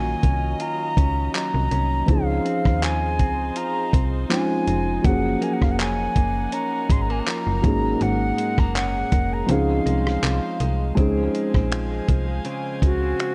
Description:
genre	contemporary R&B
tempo	81 BPM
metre	4/4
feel	swing 54% on 16ths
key	unclear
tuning	A4 = 440 Hz
part	reedy concert flute	melody	0.0-13.3 s	Gb4 to C6	-29 LUFS	equal	tape echo
part	felt-muted upright piano	accompaniment	0.0-13.3 s	Fb3 to Ab4	-28 LUFS	equal	tape echo
part	warm studio string section	sustained chords	0.0-13.3 s	Gb3 to Ab5	-37 LUFS	equal	sidechain pumping
part	direct-recorded clean electric guitar	arpeggios	0.0-13.3 s	Ab2 to Bb4	-33 LUFS	equal	spring reverb, tape echo
part	slap-like FM bass	bass	0.0-13.1 s	F1 to Eb2	-27 LUFS	equal	none
part	dusty soul sampler-style drum kit	drums	0.2-13.3 s	finger snaps, handclaps, hi-hat, kick drum, rim click	-24 LUFS	equal	none
room	small room ambience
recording	echo-heavy mix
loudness	-22 LUFS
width	mono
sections	0.0-11.0 A section; 11.0-13.3 B section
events	none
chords	0.0 Ebm9; 2.1 Dbmaj7; 5.0 Ab9sus4; 9.5 Dbmaj7

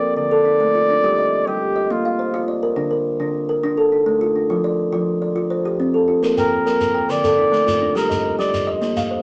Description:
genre	southern african traditional, mbira-style interlocking cycle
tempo	139 BPM (dotted quarters)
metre	12/8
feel	straight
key	unclear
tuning	A4 = 441 Hz
part	trumpet with bucket mute	melody	0.0-2.5, 6.4-8.7 s	F4 to D5	-22 LUFS	equal	none
part	kalimba	arpeggios	0.0-9.2 s	D3 to G5	-20 LUFS	equal	none
part	shekere	percussion	6.2-9.1 s	none	-32 LUFS	equal	none
room	moderate studio reverb, RT60 0.5 s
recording	none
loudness	-19 LUFS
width	mono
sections	0.0-9.2 A section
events	none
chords	0.2 Dm; 1.0 G5; 1.9 Bb; 2.8 Dm; 4.5 F; 6.2 Bb5; 7.1 Dm; 8.0 Gm

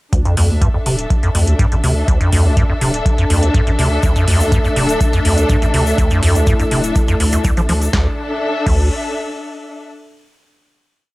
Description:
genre	acid house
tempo	123 BPM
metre	4/4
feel	straight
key	D minor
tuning	A4 = 440 Hz
part	acid bass, square	riff	0.1-8.9 s	C2 to F3	-16 LUFS	equal	overdrive, analog chorus, sidechain pumping, cassette tape
part	booming analog drum machine	drums	0.1-8.8 s	crash cymbal, hi-hat, snare drum	-24 LUFS	equal	overdrive, cassette tape
part	electronic kick drum	drums	0.1-8.8 s	none	-17 LUFS	equal	overdrive, cassette tape
part	warm studio string section	texture	0.1-9.8 s	D4 to E5	-21 LUFS	left 1 dB	sidechain pumping, cassette tape
part	saturated sub bass	bass	0.4-8.9 s	D1 to D2	-19 LUFS	equal	transformer saturation, sidechain pumping
part	dark analog pad	sustained chords	4.0-8.2 s	A3 to A5	-24 LUFS	equal	chorus, sidechain pumping, cassette tape
part	tube shaker	percussion	4.0-7.9 s	none	-30 LUFS	left 3 dB	none
room	light reverb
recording	home recording on cassette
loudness	-12 LUFS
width	side -20 dB against mid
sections	0.1-7.9 groove; 7.9-9.9 final chord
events	none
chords	0.1 D5

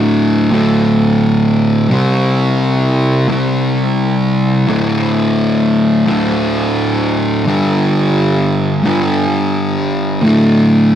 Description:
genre	metal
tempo	86 BPM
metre	4/4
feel	swing 64% on 8ths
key	unclear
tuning	A4 = 440 Hz
part	fuzz guitar	solo	0.0-11.0 s	D2 to C4	-11 LUFS	equal	distortion
room	moderate small room reverb, RT60 0.5 s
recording	rough rehearsal-room recording, warm saturation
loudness	-11 LUFS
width	side -10 dB against mid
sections	0.0-11.0 A section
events	none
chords	0.0 D5; 1.9 C5; 4.7 D5; 7.5 G5; 10.2 D5

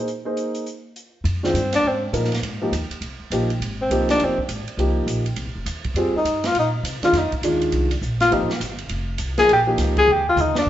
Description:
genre	modal jazz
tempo	204 BPM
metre	4/4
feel	swing 62% on 8ths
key	F dorian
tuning	A4 = 441 Hz
part	dark upright piano	accompaniment	0.0-10.1 s	Eb3 to B#4	-23 LUFS	equal	none
part	swinging big-band drum kit	drums	0.1-10.7 s	crash cymbal, hi-hat, kick drum, ride cymbal, snare drum, toms	-30 LUFS	right 2 dB	none
part	upright bass	bass	1.2-10.7 s	F1 to C3	-25 LUFS	equal	none
part	breathy tenor saxophone	melody	1.5-10.7 s	C4 to Ab4	-19 LUFS	left 1 dB	plate reverb
room	wet club reverb, RT60 0.7 s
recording	heard from further back in the room, nothing above 7.9 kHz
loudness	-19 LUFS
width	side -12 dB against mid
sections	0.0-1.3 A section; 1.3-10.7 A section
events	upright bass solo 0.0-1.3; tenor saxophone solo 1.3-10.7; drum fill 10.1-10.7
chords	0.1 A#9sus4; 1.3 Fm9; 9.5 Eb7

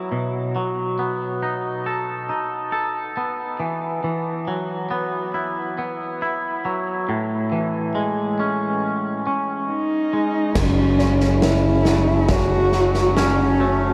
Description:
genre	post-rock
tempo	69 BPM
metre	4/4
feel	straight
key	unclear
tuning	A4 = 440 Hz
part	twangy electric guitar	arpeggios	0.0-13.9 s	F#2 to A4	-25 LUFS	equal	tremolo, analog delay
part	dark cello	melody	9.7-13.9 s	C#4 to F#4	-22 LUFS	equal	analog delay
part	glassy FM pad	sustained chords	11.8-13.9 s	F#4 to C#6	-32 LUFS	equal	none
part	growling fingered electric bass	bass	10.6-13.9 s	F#1	-23 LUFS	equal	overdrive
part	huge arena drum kit	drums	10.6-13.4 s	crash cymbal, kick drum, snare drum	-25 LUFS	equal	none
part	felt-muted upright piano	arpeggios	11.0-13.9 s	C#5 to E5	-35 LUFS	equal	none
room	wet huge ambient reverb, RT60 7.0 s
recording	dreamy mix soaked in reverb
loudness	-22 LUFS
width	mono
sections	0.0-10.6 A section; 10.6-13.9 B section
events	none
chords	0.1 B7; 3.6 Esus2; 7.1 Amaj7; 10.6 F#m

